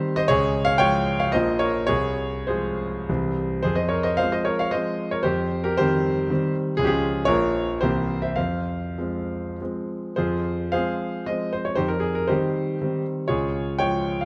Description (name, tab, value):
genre	classical, romantic triple-time dance for piano with dotted rhythms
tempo	94-129 BPM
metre	3/4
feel	rubato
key	F minor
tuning	A4 = 439 Hz
part	clear concert grand piano	solo	0.0-14.2 s	Bb1 to G5	-24 LUFS	equal	none
room	moderate scoring stage reverb, RT60 1.8 s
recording	close, detailed microphones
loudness	-24 LUFS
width	mono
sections	0.0-10.2 A section; 10.2-14.2 A section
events	none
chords	0.3 Db; 1.3 Bbm; 1.9 Fm/C; 3.1 C; 3.6 Fm; 5.3 Cm/F; 6.8 Db; 7.3 Bbm; 7.8 C7; 8.4 Fm; 11.8 Cm/F; 13.3 Db